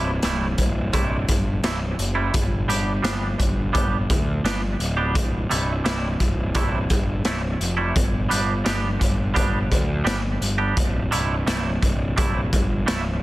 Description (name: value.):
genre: quiet-loud alternative rock.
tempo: 85 BPM.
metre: 4/4.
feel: straight.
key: C major.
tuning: A4 = 440 Hz.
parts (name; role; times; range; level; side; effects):
twangy electric guitar; arpeggios; 0.0-13.1 s; C3 to G4; -27 LUFS; right 3 dB; wide subtle chorus, tape echo.
fuzz picked electric bass; bass; 0.0-13.2 s; C1 to D2; -24 LUFS; equal; overdrive.
raw garage drum kit; drums; 0.2-13.0 s; hi-hat, kick drum, snare drum; -23 LUFS; equal; none.
room: little or no reverb.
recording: dense, heavily limited modern master.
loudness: -20 LUFS.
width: side -17 dB against mid.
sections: 0.0-13.2 A section.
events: none.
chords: 0.0 C6; 2.3 G; 5.1 C6; 8.0 G; 10.8 C6.